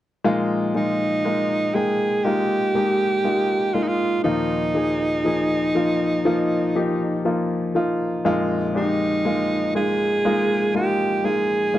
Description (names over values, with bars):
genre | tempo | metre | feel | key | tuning
pop | 60 BPM | 4/4 | straight | unclear | A4 = 438 Hz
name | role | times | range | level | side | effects
clear baby grand piano | accompaniment | 0.2-11.8 s | Bb1 to G5 | -22 LUFS | left 2 dB | none
edgy alto saxophone | melody | 0.8-11.8 s | Eb4 to Ab4 | -21 LUFS | right 2 dB | slapback echo
room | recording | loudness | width
moderate small room reverb, RT60 0.5 s | dry, close 1970s-style studio recording | -19 LUFS | side -13 dB against mid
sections
0.2-11.8 A section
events
none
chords
0.2 Bb7sus4; 4.2 Ebsus2; 8.2 Bb7sus4